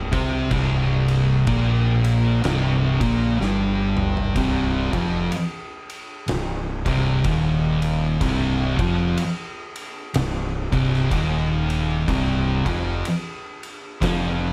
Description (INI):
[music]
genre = stoner and doom metal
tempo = 62 BPM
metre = 4/4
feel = swing 60% on 8ths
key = C minor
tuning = A4 = 439 Hz
[part]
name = fuzz fingered electric bass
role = bass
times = 0.0-14.5 s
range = C1 to C2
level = -28 LUFS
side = equal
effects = overdrive
[part]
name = thick fuzz guitar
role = riff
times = 0.1-14.5 s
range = C2 to C4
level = -25 LUFS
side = equal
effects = distortion
[part]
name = thick fuzz guitar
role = riff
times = 0.1-14.5 s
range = C2 to C4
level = -29 LUFS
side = equal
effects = distortion
[part]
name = oversized low-tuned drum kit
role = drums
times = 0.1-14.3 s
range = kick drum, ride cymbal, snare drum, toms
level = -30 LUFS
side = equal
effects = none
[sound]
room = light reverb, studio ambience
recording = none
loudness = -22 LUFS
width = mono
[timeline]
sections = 0.0-4.4 A section; 4.4-14.5 B section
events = drum fill 3.4-4.4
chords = 0.0 C5; 4.4 Cm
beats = | 0.52 1.48 2.44 3.40 | 4.36 5.32 6.29 7.25 | 8.22 9.18 10.15 11.12 | 12.08 13.05 14.02